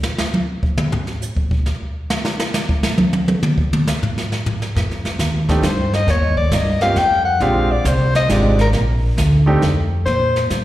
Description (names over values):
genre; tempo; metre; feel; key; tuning
jazz, small-group swing and bop; 136 BPM; 3/4; swing 67% on 8ths; Bb mixolydian; A4 = 440 Hz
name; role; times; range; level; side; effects
jazz brush drum kit; drums; 0.0-10.6 s; brushed snare drum, hi-hat, kick drum, snare drum, toms; -19 LUFS; equal; slapback echo
upright bass; bass; 4.8-10.6 s; Ab1 to Bb2; -17 LUFS; equal; none
warm grand piano; accompaniment; 5.5-9.6 s; Ab3 to G4; -21 LUFS; right 2 dB; plate reverb, slapback echo
breathy soprano saxophone; melody; 5.7-10.5 s; Bb4 to G5; -18 LUFS; left 2 dB; plate reverb, slapback echo
room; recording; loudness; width
moderate club reverb, RT60 0.7 s; live gig heard through the venue's PA, recital hall reverb; -15 LUFS; side -14 dB against mid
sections
0.0-10.1 A section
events
soprano saxophone solo 0.0-10.1; drum solo 0.0-4.8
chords
0.0 N.C.; 4.8 F7sus2; 6.1 Eb9; 7.4 Bb13; 9.6 N.C.; 10.1 Bbsus2